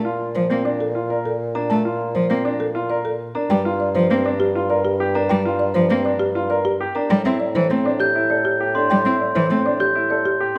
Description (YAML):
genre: classical, minimalist pattern music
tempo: 100 BPM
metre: 3/4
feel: straight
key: unclear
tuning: A4 = 439 Hz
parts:
  - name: folk marimba with medium mallets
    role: melody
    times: 0.0-10.6 s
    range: G4 to A5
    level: -26 LUFS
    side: equal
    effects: none
  - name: bright grand piano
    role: arpeggios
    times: 0.0-10.6 s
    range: C4 to Bb4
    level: -27 LUFS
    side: equal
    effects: none
  - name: mellow bassoon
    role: bass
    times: 0.0-10.5 s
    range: G2 to Bb2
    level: -27 LUFS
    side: equal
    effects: none
  - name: rich cello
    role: accompaniment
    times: 0.4-9.6 s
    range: E3 to C4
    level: -23 LUFS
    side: equal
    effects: none
  - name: glockenspiel with rubber mallets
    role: arpeggios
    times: 1.6-10.6 s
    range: Bb5 to G6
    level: -27 LUFS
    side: equal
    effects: none
room: moderate recital hall reverb, RT60 1.5 s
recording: none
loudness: -20 LUFS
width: mono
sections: 0.0-10.6 A section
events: none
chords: 0.0 Bbmaj7; 3.5 Gm7; 7.1 Am7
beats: 0.50 1.10 | 1.70 2.30 2.90 | 3.50 4.10 4.70 | 5.30 5.90 6.50 | 7.10 7.70 8.30 | 8.90 9.50 10.10